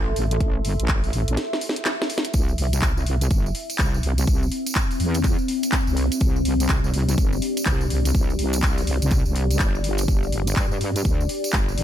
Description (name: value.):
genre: bass house.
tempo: 124 BPM.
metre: 4/4.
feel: swing 62% on 16ths.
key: unclear.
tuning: A4 = 440 Hz.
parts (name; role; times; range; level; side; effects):
wobble bass; bass; 0.0-11.8 s; G1 to G2; -23 LUFS; equal; chorus, sidechain pumping.
deep dark ambient pad; texture; 0.0-11.8 s; C4 to C6; -28 LUFS; left 2 dB; chorus, built-in reverb, sidechain pumping.
garage drum kit; drums; 0.2-11.8 s; handclaps, hi-hat, snare drum; -28 LUFS; equal; none.
electronic kick drum; drums; 0.4-11.7 s; none; -22 LUFS; equal; none.
tambourine; percussion; 2.3-11.8 s; none; -34 LUFS; right 3 dB; none.
room: little or no reverb.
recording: none.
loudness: -20 LUFS.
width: side -11 dB against mid.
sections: 0.0-11.8 A section.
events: break 1.4-2.3; drum fill 1.4-2.3.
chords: 0.0 Am; 2.3 C; 10.1 Gadd9.